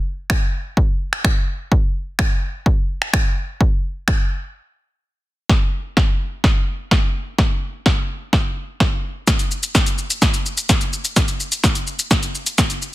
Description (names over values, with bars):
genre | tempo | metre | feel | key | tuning
pop | 127 BPM | 4/4 | straight | none | none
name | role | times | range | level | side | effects
punchy analog drum machine | drums | 0.3-12.9 s | finger snaps, hi-hat, kick drum, shaker, snare drum | -16 LUFS | equal | soft clipping on snare
room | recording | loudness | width
little or no reverb | dense, heavily limited modern master | -17 LUFS | side -17 dB against mid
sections
0.0-5.5 A section; 5.5-12.9 B section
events
break 4.6-5.5; build-up 5.5-12.9; drum fill 5.5-12.9; filter sweep 5.5-12.9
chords
none